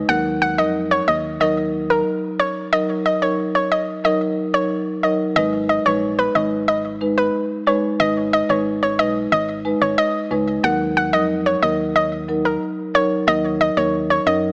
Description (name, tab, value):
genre	dancehall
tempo	91 BPM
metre	4/4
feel	straight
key	Eb minor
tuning	A4 = 441 Hz
part	organ-like FM bass	bass	0.0-14.5 s	Ab1 to Gb2	-30 LUFS	equal	none
part	hollow square pluck	melody	0.1-14.4 s	Bb4 to Gb5	-18 LUFS	equal	chorus, digital delay
part	marimba with medium mallets	accompaniment	0.1-14.4 s	Gb3 to Cb5	-21 LUFS	equal	none
room	light reverb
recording	small speaker sound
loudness	-16 LUFS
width	side -36 dB against mid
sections	0.0-5.4 A section; 5.4-14.5 B section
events	none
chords	0.1 Ebm; 5.4 Abm; 10.6 Ebm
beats	| 0.09 0.75 1.41 2.07 | 2.73 3.38 4.04 4.70 | 5.36 6.02 6.68 7.34 | 8.00 8.66 9.32 9.98 | 10.64 11.30 11.96 12.62 | 13.28 13.93